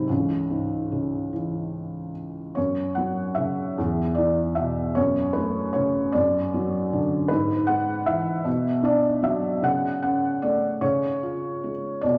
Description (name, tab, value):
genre	classical, lyrical solo piano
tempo	47-52 BPM (dotted quarters)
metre	6/8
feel	rubato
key	F# minor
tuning	A4 = 443 Hz
part	felt-muted upright piano	solo	0.0-12.2 s	C#2 to F#5	-24 LUFS	equal	none
room	wet recital hall reverb, RT60 1.6 s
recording	none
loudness	-25 LUFS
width	mono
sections	0.0-2.6 A section; 2.6-12.2 B section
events	none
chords	0.1 C#m; 2.6 F#5; 3.8 E5; 5.0 F#m; 6.2 D/F#; 7.3 E/G#; 8.5 Bm; 9.6 Dmaj7/C#; 10.8 C#